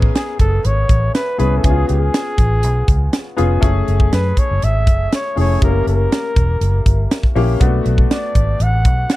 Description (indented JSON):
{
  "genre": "polished 1980s jazz-funk pop",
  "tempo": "121 BPM",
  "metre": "4/4",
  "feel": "straight",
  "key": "unclear",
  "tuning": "A4 = 440 Hz",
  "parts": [
    { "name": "warm grand piano", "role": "accompaniment", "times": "0.0-9.2 s", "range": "A3 to A#4", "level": "-22 LUFS", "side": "left 4 dB", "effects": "analog chorus" },
    { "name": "vintage muted fingered electric bass", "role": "bass", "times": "0.0-9.0 s", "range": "E1 to F#2", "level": "-16 LUFS", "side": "equal", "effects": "none" },
    { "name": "crisp fusion drum kit", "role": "drums", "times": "0.0-9.2 s", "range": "hi-hat, kick drum, snare drum", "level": "-16 LUFS", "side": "equal", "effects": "none" },
    { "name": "warm flugelhorn", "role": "melody", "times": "0.1-9.2 s", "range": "G#4 to F#5", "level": "-22 LUFS", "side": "equal", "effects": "slapback echo" }
  ],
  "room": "little or no reverb",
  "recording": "dry, close 1970s-style studio recording",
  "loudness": "-13 LUFS",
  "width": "side -17 dB against mid",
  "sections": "0.0-9.2 A section",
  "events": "none",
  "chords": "0.0 Amaj9; 1.6 C#7; 3.6 F#m9; 5.6 F#7b9; 7.6 Bm7",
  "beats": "0.14 0.64 1.14 | 1.64 2.13 2.63 3.13 | 3.62 4.12 4.62 5.12 | 5.62 6.11 6.61 7.11 | 7.60 8.10 8.60 9.10"
}